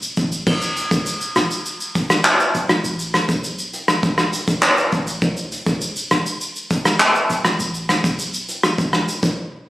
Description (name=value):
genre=dancehall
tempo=101 BPM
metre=4/4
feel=straight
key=unclear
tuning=A4 = 440 Hz
part: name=vintage brush drum kit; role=drums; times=0.0-9.4 s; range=crash cymbal, handclaps, hi-hat, kick drum, rim click, shaker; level=-17 LUFS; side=equal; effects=none
part: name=clean 808-style bass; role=bass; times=0.2-9.0 s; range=A1 to D2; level=-28 LUFS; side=equal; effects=none
room=light reverb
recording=recorded on a phone in the room, studio reverb, compression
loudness=-17 LUFS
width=side -16 dB against mid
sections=0.5-9.7 A section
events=break 9.4-9.7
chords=none